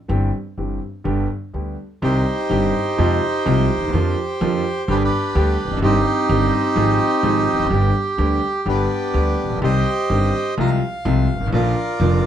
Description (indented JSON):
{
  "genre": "tango",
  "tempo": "126 BPM",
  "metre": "4/4",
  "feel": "rubato",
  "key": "C minor",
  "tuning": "A4 = 440 Hz",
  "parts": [
    { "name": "clear concert grand piano", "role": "accompaniment", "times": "0.1-12.2 s", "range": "F1 to Ab4", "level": "-22 LUFS", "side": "left 1 dB", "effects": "none" },
    { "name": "upright bass", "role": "bass", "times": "0.1-12.2 s", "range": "E1 to F2", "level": "-21 LUFS", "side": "right 1 dB", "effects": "none" },
    { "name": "bandoneon", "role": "melody", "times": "2.0-12.3 s", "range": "B3 to Bb5", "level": "-20 LUFS", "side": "right 1 dB", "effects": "slapback echo" }
  ],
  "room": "light reverb",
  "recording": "close, detailed microphones",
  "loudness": "-17 LUFS",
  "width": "side -10 dB against mid",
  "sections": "0.0-2.0 A section; 2.0-12.3 B section",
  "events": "none",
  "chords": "0.1 C/G; 1.1 G; 2.0 Cm; 3.0 Fm; 3.9 Bb/F; 4.9 G; 5.8 Cm/G; 6.8 Fm/Ab; 7.7 G; 9.6 Cm; 10.6 Fm/C; 11.5 Bb"
}